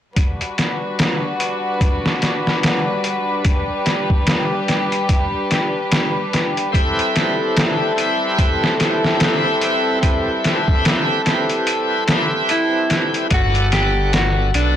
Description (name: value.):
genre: trip hop.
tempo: 73 BPM.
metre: 4/4.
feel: swing 58% on 16ths.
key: unclear.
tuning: A4 = 439 Hz.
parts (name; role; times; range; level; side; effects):
warm studio string section; sustained chords; 0.2-13.3 s; G3 to B4; -21 LUFS; left 1 dB; none.
trip hop sampler-style drum kit; drums; 0.2-14.8 s; hi-hat, kick drum, snare drum; -18 LUFS; equal; overdrive.
bright tonewheel organ; accompaniment; 6.7-14.8 s; B3 to F#5; -20 LUFS; equal; overdrive, slow rotary speaker, tremolo, vintage 12-bit sampler grit, tape echo.
clean electric guitar; melody; 12.5-14.8 s; D4 to G4; -20 LUFS; equal; dub echo.
dark detuned saw bass; bass; 13.3-14.8 s; G1 to B1; -18 LUFS; equal; transformer saturation.
room: moderate echo chamber reverb, RT60 1.7 s.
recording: blown-out, overdriven recording, vinyl crackle, overdrive.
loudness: -16 LUFS.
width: side -10 dB against mid.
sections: 0.2-13.3 A section; 13.3-14.8 B section.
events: kick drops out 11.7-13.3.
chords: 0.2 Gmaj7; 6.7 Am7; 13.3 Gmaj7.